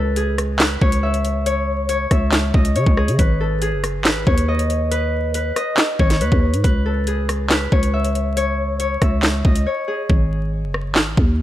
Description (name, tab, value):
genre	hip hop, drill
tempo	139 BPM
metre	4/4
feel	half-time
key	unclear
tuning	A4 = 440 Hz
part	Celtic harp	melody	0.0-11.4 s	G#4 to E5	-22 LUFS	left 2 dB	digital delay
part	growling 808-style bass	bass	0.0-11.4 s	F#1 to C#3	-20 LUFS	equal	none
part	drill drum kit	drums	0.2-11.3 s	handclaps, hi-hat, kick drum, rim click, snare drum	-18 LUFS	equal	none
room	little or no reverb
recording	vinyl crackle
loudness	-16 LUFS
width	side -13 dB against mid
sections	0.0-11.4 A section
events	break 9.7-10.1; hi-hats muted 10.1-11.4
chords	0.0 C#m; 3.2 G#m; 6.6 C#m; 10.1 G#5